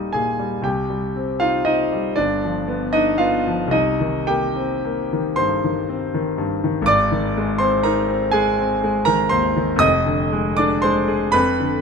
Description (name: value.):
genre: classical, romantic nocturne for solo piano.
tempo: 35-42 BPM (dotted quarters).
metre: 6/8.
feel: rubato.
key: unclear.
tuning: A4 = 441 Hz.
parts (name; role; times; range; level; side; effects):
clear concert grand piano; solo; 0.0-11.8 s; Eb1 to Eb6; -17 LUFS; equal; none.
room: light reverb.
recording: close, detailed microphones.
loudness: -17 LUFS.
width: side -5 dB against mid.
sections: 0.0-11.8 A section.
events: none.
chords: 0.0 Eb; 0.7 Cm; 2.2 G7; 3.7 Cm7; 6.9 Ab; 9.8 Ddim/F.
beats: | 0.65 2.18 | 3.73 5.38 | 6.89 8.35 | 9.84 11.36.